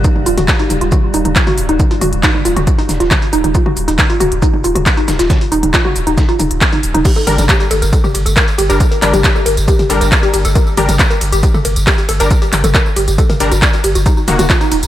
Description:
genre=driving peak-time techno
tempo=137 BPM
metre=4/4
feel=straight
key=G harmonic minor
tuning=A4 = 440 Hz
part: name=woody wave-folded pluck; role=riff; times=0.0-14.7 s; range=C#4 to D5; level=-17 LUFS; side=equal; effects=tube saturation, lush chorus, sidechain pumping, tape echo
part: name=warm sub bass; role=bass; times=0.0-14.9 s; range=Eb1 to G1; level=-17 LUFS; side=equal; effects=overdrive, sidechain pumping, low-pass filter
part: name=metallic inharmonic drone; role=drone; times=0.0-7.1 s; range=G2 to G3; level=-25 LUFS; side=left 2 dB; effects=chorus, built-in reverb, sidechain pumping
part: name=dusty soul sampler-style drum kit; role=drums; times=0.0-14.8 s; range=hi-hat, shaker, snare drum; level=-27 LUFS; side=right 1 dB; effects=overdrive, high-pass filter on perc, high-pass filter on hats, high-pass filter on snare, high-pass filter on room
part: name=electronic kick drum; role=drums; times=0.0-14.6 s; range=none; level=-13 LUFS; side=equal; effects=none
part: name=techno drum kit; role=drums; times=0.0-14.9 s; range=crash cymbal, handclaps, hi-hat, ride cymbal, tambourine, toms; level=-17 LUFS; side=equal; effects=sidechain pumping on hats, sidechain pumping on cymbals, sidechain pumping on toms, sidechain pumping on perc
part: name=supersaw stab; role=stabs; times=7.3-14.5 s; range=Eb3 to Bb4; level=-19 LUFS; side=left 2 dB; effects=sidechain pumping, analog delay
room=light reverb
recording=none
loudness=-10 LUFS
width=side -13 dB against mid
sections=0.0-7.1 A section; 7.1-14.9 B section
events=drop 7.1-14.9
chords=0.0 Ebm; 7.1 Gm; 14.1 Ebm

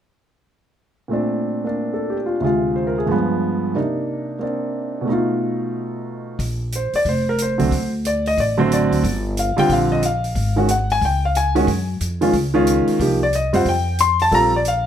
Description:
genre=jazz piano trio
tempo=182 BPM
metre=4/4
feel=swing 63% on 8ths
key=Bb major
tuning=A4 = 440 Hz
part: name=warm concert grand piano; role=melody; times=1.1-14.9 s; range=D2 to C6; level=-18 LUFS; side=equal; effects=none
part: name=upright bass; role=bass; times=6.4-14.9 s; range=F1 to Gb2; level=-22 LUFS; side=equal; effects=none
part: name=open jazz drum kit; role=drums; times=6.4-14.7 s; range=hi-hat, kick drum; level=-30 LUFS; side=left 1 dB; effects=none
room=light reverb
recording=none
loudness=-17 LUFS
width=side -9 dB against mid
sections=1.1-6.4 A section; 6.4-14.9 B section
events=none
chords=1.1 Bbmaj9; 2.4 Dm7b5; 3.1 G7b9; 3.8 Cm9; 5.1 B7#11; 6.4 Bbsus2; 7.7 D7; 9.0 Gm7; 10.4 Ab5; 11.0 Db5; 11.7 Gbsus2; 13.0 Cm7; 13.7 Fsus2; 14.3 Bbsus2

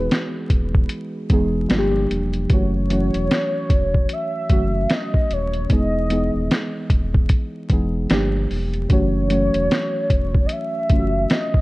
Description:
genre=lo-fi hip hop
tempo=75 BPM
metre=4/4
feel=swing 60% on 16ths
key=F# dorian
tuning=A4 = 445 Hz
part: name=warm velvety synth lead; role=melody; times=0.0-11.6 s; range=B4 to E5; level=-25 LUFS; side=equal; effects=chorus, low-pass filter
part: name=muted felt-like synth keys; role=accompaniment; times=0.0-11.6 s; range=E3 to G#4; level=-24 LUFS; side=equal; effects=chorus, cassette tape, low-pass filter
part: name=sub bass with octave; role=bass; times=0.0-11.3 s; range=D#1 to G1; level=-23 LUFS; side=equal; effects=none
part: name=lo-fi sampler-style drum kit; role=drums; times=0.1-11.6 s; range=hi-hat, kick drum, snare drum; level=-19 LUFS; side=equal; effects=none
room=light reverb, digital ambience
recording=vinyl crackle, nothing above 10.6 kHz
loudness=-17 LUFS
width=side -20 dB against mid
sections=0.0-11.6 A section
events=none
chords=0.0 Emaj7; 1.7 Gm7; 2.5 F#m7; 5.7 Emaj7; 8.1 Gm7; 8.9 F#m7

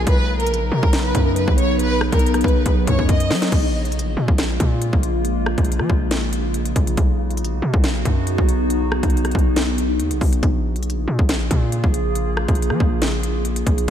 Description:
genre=hip hop, drill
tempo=139 BPM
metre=4/4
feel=half-time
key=Bb phrygian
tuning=A4 = 439 Hz
part: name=warm studio violin section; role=melody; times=0.0-3.5 s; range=Bb4 to D#5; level=-24 LUFS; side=equal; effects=diffuse ambient delay
part: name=warbly tape-like pad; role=sustained chords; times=0.0-13.8 s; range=C#3 to Ab4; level=-24 LUFS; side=left 1 dB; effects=chorus, built-in reverb, phaser
part: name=distorted 808-style bass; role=bass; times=0.0-13.9 s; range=Bb1 to F#3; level=-22 LUFS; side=equal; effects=distortion
part: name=drill drum kit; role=drums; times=0.1-13.9 s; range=crash cymbal, hi-hat, kick drum, rim click, snare drum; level=-20 LUFS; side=equal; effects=none
room=light reverb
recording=none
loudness=-17 LUFS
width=side -9 dB against mid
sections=0.0-3.5 A section; 3.5-13.9 B section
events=drum fill 2.7-3.5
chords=0.1 Badd9; 3.5 Bbm7; 7.0 Badd9; 10.4 Bbm7

